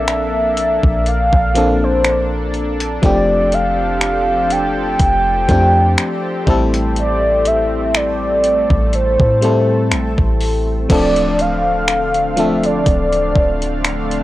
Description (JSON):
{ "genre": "contemporary R&B", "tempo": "61 BPM", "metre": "4/4", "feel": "swing 54% on 16ths", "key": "D minor", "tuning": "A4 = 440 Hz", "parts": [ { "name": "mellow horn-like synth lead", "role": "melody", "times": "0.0-14.1 s", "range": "C5 to G5", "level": "-17 LUFS", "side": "equal", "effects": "chorus, tape echo" }, { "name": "FM electric piano", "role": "accompaniment", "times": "0.0-14.2 s", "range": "F3 to A4", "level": "-20 LUFS", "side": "left 2 dB", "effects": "chorus" }, { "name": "lush unison pad", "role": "sustained chords", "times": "0.0-14.2 s", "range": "D3 to F5", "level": "-24 LUFS", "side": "equal", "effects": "chorus" }, { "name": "soft 808-style bass", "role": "bass", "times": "0.0-14.2 s", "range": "D1 to A2", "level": "-20 LUFS", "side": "equal", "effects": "none" }, { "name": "gated 80s digital drum machine", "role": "drums", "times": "0.1-14.2 s", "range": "crash cymbal, finger snaps, hi-hat, kick drum", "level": "-18 LUFS", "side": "equal", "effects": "overdrive" } ], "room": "little or no reverb", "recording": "dry, gritty hardware recording, cassette tape", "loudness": "-13 LUFS", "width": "side -16 dB against mid", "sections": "0.0-10.9 A section; 10.9-14.2 B section", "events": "none", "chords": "0.0 Bbmaj9; 3.0 F69; 6.5 Am7; 10.9 Dm7", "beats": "0.08 1.06 2.04 | 3.03 4.01 5.00 5.98 | 6.96 7.95 8.93 9.91 | 10.90 11.88 12.87 13.85" }